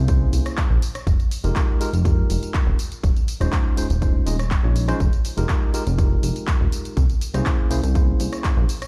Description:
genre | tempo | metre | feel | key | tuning
nu-disco, nu disco | 122 BPM | 4/4 | straight | F minor | A4 = 441 Hz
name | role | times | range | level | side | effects
chorused synth bass | bass | 0.0-8.6 s | Eb1 to C2 | -23 LUFS | equal | tube saturation
barky tine electric piano | accompaniment | 0.1-8.7 s | Ab3 to Eb5 | -31 LUFS | equal | tape echo
electronic kick drum | drums | 0.1-8.5 s | none | -22 LUFS | equal | overdrive
house drum kit | drums | 0.1-8.9 s | handclaps, hi-hat, rim click, tambourine | -34 LUFS | equal | overdrive
room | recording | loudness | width
little or no reverb | played on a big sound system in a bare room, stone room reverb, faint mains hum | -21 LUFS | mono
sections
0.0-8.9 A section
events
none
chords
0.0 C7b9b13; 0.8 Fm11; 2.8 Eb13sus4; 5.0 Fm11; 7.0 C7b9b13

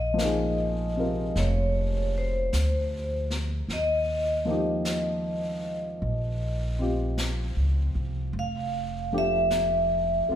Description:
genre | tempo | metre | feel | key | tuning
jazz ballad | 52 BPM | 4/4 | swing 68% on 8ths | unclear | A4 = 440 Hz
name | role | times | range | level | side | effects
vibraphone with medium hard mallets | melody | 0.0-10.4 s | C5 to F5 | -28 LUFS | equal | none
upright bass | bass | 0.0-10.3 s | F1 to Eb2 | -29 LUFS | equal | none
warm upright piano | accompaniment | 0.1-10.4 s | C3 to Bb4 | -31 LUFS | left 1 dB | none
vintage brush drum kit | drums | 0.2-10.4 s | brushed snare drum, hi-hat, snare drum | -38 LUFS | left 1 dB | none
room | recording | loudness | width
light reverb | none | -24 LUFS | side -10 dB against mid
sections
0.0-10.4 A section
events
none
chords
0.0 Bbsus2; 3.7 Ebadd9; 8.3 F69

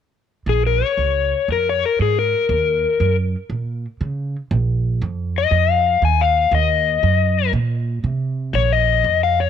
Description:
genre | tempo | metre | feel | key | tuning
blues | 119 BPM | 4/4 | swing 64% on 8ths | Bb minor | A4 = 442 Hz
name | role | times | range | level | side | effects
overdriven slide guitar | melody | 0.5-9.5 s | Ab4 to Ab5 | -17 LUFS | left 8 dB | none
upright bass | bass | 0.5-9.5 s | Bb1 to Db3 | -20 LUFS | right 3 dB | none
room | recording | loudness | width
light reverb, small room ambience | none | -16 LUFS | side -8 dB against mid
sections
0.5-4.5 A section; 4.5-9.5 B section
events
none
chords
0.5 Bbm7; 2.5 Ebm7; 4.5 Bb5; 6.5 Ebm; 8.5 Bbm

